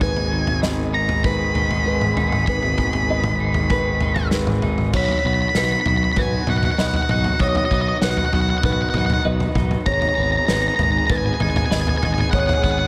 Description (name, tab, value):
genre	post-rock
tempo	98 BPM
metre	4/4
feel	straight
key	B major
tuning	A4 = 440 Hz
part	octave-fuzz lead guitar	melody	0.0-12.9 s	D#5 to B5	-26 LUFS	equal	distortion, tape echo
part	muted symphonic string section	sustained chords	0.0-12.9 s	D#3 to G#4	-34 LUFS	equal	none
part	felt-muted upright piano	arpeggios	0.0-12.9 s	B4 to D#5	-30 LUFS	equal	tape echo
part	twelve-string electric guitar	arpeggios	0.0-12.9 s	G#2 to B4	-32 LUFS	equal	tape echo
part	fuzz fingered electric bass	bass	0.0-12.8 s	G#1 to B1	-26 LUFS	equal	overdrive
part	loose indie drum kit	drums	0.0-12.8 s	crash cymbal, kick drum, snare drum, toms	-25 LUFS	equal	none
room	light reverb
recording	none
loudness	-20 LUFS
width	mono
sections	0.0-4.9 A section; 4.9-12.9 B section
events	none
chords	0.0 G#m; 4.9 B; 9.9 G#m